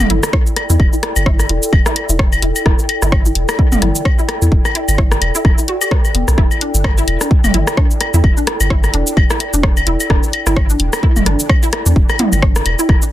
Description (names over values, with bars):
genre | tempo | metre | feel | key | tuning
minimal techno | 129 BPM | 4/4 | swing 57% on 16ths | E minor | A4 = 440 Hz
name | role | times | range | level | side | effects
punchy sub bass | bass | 0.0-13.0 s | E1 to E2 | -16 LUFS | equal | sidechain pumping
house drum kit | drums | 0.0-13.1 s | cabasa, hi-hat, rim click | -20 LUFS | left 1 dB | soft clipping on snare
organic electronic drum kit | percussion | 0.0-13.0 s | claves, rim click, toms | -19 LUFS | left 1 dB | soft clipping on snare, dub echo
warbly tape-like pad | texture | 0.0-13.1 s | E4 to G5 | -25 LUFS | right 1 dB | chorus, built-in reverb, sidechain pumping
resonant blip pluck | riff | 0.1-13.1 s | B3 to B4 | -23 LUFS | left 1 dB | ensemble chorus, sidechain pumping, dub echo
electronic kick drum | drums | 0.3-13.0 s | none | -13 LUFS | equal | none
room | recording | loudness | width
light reverb | dense, heavily limited modern master | -12 LUFS | side -13 dB against mid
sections
0.0-13.1 A section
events
none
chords
0.0 Em